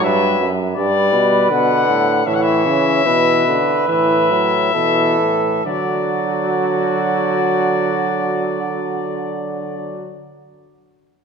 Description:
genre	classical, imitative canzona for brass ensemble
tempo	64-84 BPM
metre	4/4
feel	straight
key	D major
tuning	A4 = 440 Hz
part	warm trumpet	melody	0.0-10.1 s	D5 to F#5	-19 LUFS	left 8 dB	none
part	mellow flugelhorn	second line	0.0-10.1 s	F#4 to C#5	-21 LUFS	right 4 dB	none
part	bright trombone	accompaniment	0.0-10.1 s	D3 to G3	-21 LUFS	right 1 dB	none
part	clear euphonium	bass	0.0-10.1 s	F#2 to D3	-22 LUFS	right 4 dB	none
room	moderate concert hall reverb, RT60 2.0 s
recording	none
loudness	-14 LUFS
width	side -6 dB against mid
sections	0.0-5.7 A section; 5.7-9.4 B section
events	slowing down 0.0-5.7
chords	0.0 B5; 0.8 G; 2.3 A; 5.7 D

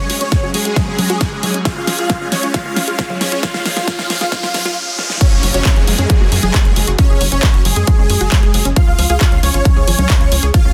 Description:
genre	uplifting trance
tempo	135 BPM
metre	4/4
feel	straight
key	unclear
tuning	A4 = 440 Hz
part	supersaw chords	melody	0.0-10.7 s	G#3 to E#5	-23 LUFS	equal	ensemble chorus, sidechain pumping, dub echo
part	shimmering ambient pad	sustained chords	0.0-4.7 s	E#3 to G#4	-30 LUFS	equal	chorus, built-in reverb, phaser, vintage 12-bit sampler grit, sidechain pumping
part	unison pluck	arpeggios	0.0-10.7 s	E#3 to G#4	-28 LUFS	equal	sidechain pumping, dub echo
part	tight sequencer bass	bass	0.0-10.7 s	F#1 to F#2	-21 LUFS	equal	sidechain pumping, high-pass filter
part	riser and downlifter	sound effects	0.2-8.8 s	none	-28 LUFS	equal	none
part	big-room dance drum kit	drums	0.1-10.6 s	congas, crash cymbal, handclaps, hi-hat, snare drum	-22 LUFS	equal	none
part	electronic kick drum	drums	0.3-10.6 s	none	-16 LUFS	equal	none
room	digital ambience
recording	dense, heavily limited modern master, high-pass filter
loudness	-14 LUFS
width	mono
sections	0.0-5.2 A section; 5.2-10.7 B section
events	build-up 0.0-5.2; drum fill 0.0-4.8, 5.0; filter sweep 0.0-5.2; riser 0.2-5.2; drop 5.2-10.7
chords	0.0 F#sus2; 1.7 C#; 5.2 F#sus2; 8.8 C#

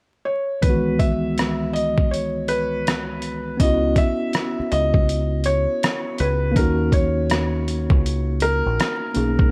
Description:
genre	lo-fi hip hop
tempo	81 BPM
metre	4/4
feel	swing 65% on 16ths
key	C# dorian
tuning	A4 = 440 Hz
part	felt-muted upright piano	melody	0.3-9.5 s	A#4 to E5	-26 LUFS	equal	none
part	tine electric piano	accompaniment	0.6-9.5 s	C#2 to G#4	-27 LUFS	equal	none
part	trip hop sampler-style drum kit	drums	0.6-9.5 s	hi-hat, kick drum, rim click	-23 LUFS	equal	none
part	deep dub picked electric bass	bass	3.6-9.5 s	A#1 to D#2	-25 LUFS	equal	none
room	light reverb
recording	vinyl crackle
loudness	-21 LUFS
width	mono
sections	0.6-3.6 A section; 3.6-9.5 B section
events	none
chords	0.0 N.C.; 0.6 C#m11; 6.6 D#m7

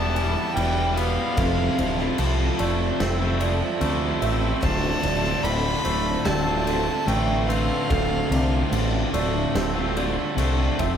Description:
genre	post-rock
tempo	73 BPM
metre	4/4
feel	straight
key	D dorian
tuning	A4 = 440 Hz
part	bright violin	melody	0.0-9.1 s	F5 to B5	-28 LUFS	left 1 dB	none
part	mellow electric guitar	arpeggios	0.0-11.0 s	G4 to E5	-33 LUFS	right 5 dB	spring reverb, tape echo
part	twangy electric guitar	arpeggios	0.0-11.0 s	D2 to C4	-30 LUFS	left 1 dB	none
part	distorted electric guitar	riff	0.0-11.0 s	D2 to F4	-30 LUFS	left 7 dB	distortion
part	distorted electric guitar	riff	0.0-11.0 s	D2 to F4	-28 LUFS	right 6 dB	distortion
part	growling fingered electric bass	bass	0.0-11.0 s	D1 to D2	-25 LUFS	equal	overdrive
part	huge arena drum kit	drums	0.2-11.0 s	kick drum, ride cymbal, snare drum	-30 LUFS	equal	none
room	moderate large studio reverb, RT60 1.3 s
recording	band playing live in one room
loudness	-20 LUFS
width	side -8 dB against mid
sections	0.0-11.0 A section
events	none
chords	0.0 Em; 1.4 Fmaj7; 4.6 Dm7

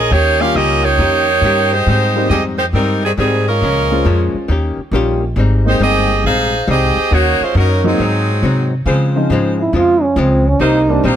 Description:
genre	jazz, big band swing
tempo	137 BPM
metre	4/4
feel	swing 66% on 8ths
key	Ab major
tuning	A4 = 440 Hz
part	edgy saxophone section	melody	0.0-8.7 s	Eb3 to F5	-15 LUFS	right 2 dB	none
part	upright bass	bass	0.0-11.2 s	G1 to Db3	-16 LUFS	equal	none
part	archtop guitar, miked and amplified	accompaniment	0.1-11.2 s	Ab2 to G4	-21 LUFS	left 4 dB	none
part	warm grand piano	accompaniment	0.4-11.0 s	F3 to C5	-19 LUFS	left 1 dB	none
part	warm saxophone section	sustained chords	8.9-11.2 s	Ab3 to C5	-20 LUFS	equal	none
part	breathy trombone	melody	9.6-11.2 s	C4 to F4	-13 LUFS	right 2 dB	none
room	light reverb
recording	close, detailed microphones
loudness	-12 LUFS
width	side -10 dB against mid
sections	0.0-8.9 A section; 8.9-11.2 B section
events	trombone solo 8.9-11.2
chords	0.1 Eb7; 1.9 Abmaj7; 3.6 Bbm7; 4.5 Eb7; 5.4 Abmaj7; 7.1 Ebm7; 8.0 Ab7; 8.9 Dbmaj7; 10.6 Cm7

